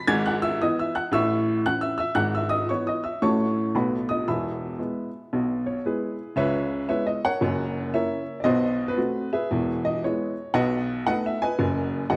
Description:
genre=jazz, stride piano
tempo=115 BPM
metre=4/4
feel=swing 65% on 8ths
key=E major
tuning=A4 = 442 Hz
part: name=warm upright piano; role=solo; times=0.0-12.2 s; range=E1 to G#6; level=-25 LUFS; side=equal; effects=none
room=moderate concert hall reverb, RT60 1.9 s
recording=close, detailed microphones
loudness=-25 LUFS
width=mono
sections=0.0-6.4 A section; 6.4-12.2 B section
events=none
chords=0.1 E/G#; 1.1 A; 2.2 E/G#; 3.2 F#m/A; 3.7 B7; 4.3 E; 6.4 C#m7; 7.4 F#7; 8.4 B5; 9.5 E; 10.5 B7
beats=| 0.07 0.59 1.12 1.64 | 2.16 2.69 3.21 3.73 | 4.26 4.78 5.30 5.83 | 6.35 6.88 7.40 7.92 | 8.45 8.97 9.49 10.02 | 10.54 11.06 11.59 12.11

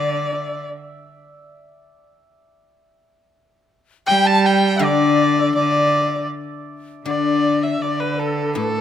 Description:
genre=chinese traditional, Chinese chamber ensemble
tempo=80 BPM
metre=2/4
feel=rubato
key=D zhi mode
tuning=A4 = 440 Hz
part: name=rich erhu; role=melody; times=0.0-0.7, 4.1-8.8 s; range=A4 to A5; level=-20 LUFS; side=left 1 dB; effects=none
part: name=hammered dulcimer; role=second line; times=0.0-8.8 s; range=A4 to A5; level=-29 LUFS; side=right 4 dB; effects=none
part: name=low xiao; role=second line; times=0.0-0.7, 4.1-8.8 s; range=A4 to A5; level=-24 LUFS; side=left 6 dB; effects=none
part: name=rich cello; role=second line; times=0.0-0.7, 4.1-8.8 s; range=A2 to G3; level=-22 LUFS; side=right 5 dB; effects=none
part: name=guzheng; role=accompaniment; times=0.0-0.3, 4.8-8.8 s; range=A2 to G3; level=-22 LUFS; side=left 7 dB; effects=none
room=moderate recital hall reverb, RT60 1.8 s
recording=close, detailed microphones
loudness=-16 LUFS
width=side -10 dB against mid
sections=0.0-7.1 A section; 7.1-8.8 B section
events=none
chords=none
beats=0.33 | 1.09 1.85 | 2.60 3.34 | 4.08 4.82 | 5.57 6.32 | 7.07 7.82 | 8.57

